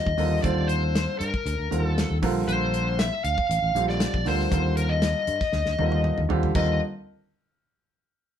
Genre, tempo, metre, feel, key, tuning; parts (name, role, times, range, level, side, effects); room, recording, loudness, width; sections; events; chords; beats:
electric jazz fusion; 118 BPM; 4/4; straight; Eb major; A4 = 440 Hz
smooth overdriven lead guitar; melody; 0.0-6.8 s; Bb4 to F5; -27 LUFS; left 2 dB
warm concert grand piano; accompaniment; 0.0-6.8 s; D3 to C5; -28 LUFS; right 4 dB
fretless electric bass; bass; 0.1-6.8 s; A1 to G2; -26 LUFS; equal
damped 70s drum kit; drums; 0.1-6.7 s; crash cymbal, hi-hat, kick drum, snare drum, toms; -29 LUFS; equal
moderate studio reverb, RT60 0.6 s; band playing live in one room; -22 LUFS; side -9 dB against mid
0.0-6.5 A section; 6.5-8.4 B section
drum fill 5.5-6.5
0.0 Ebmaj9; 2.2 Bbadd9; 4.5 Ebmaj9
| 0.44 0.95 1.46 1.97 | 2.48 2.99 3.50 4.00 | 4.51 5.02 5.53 6.04 | 6.55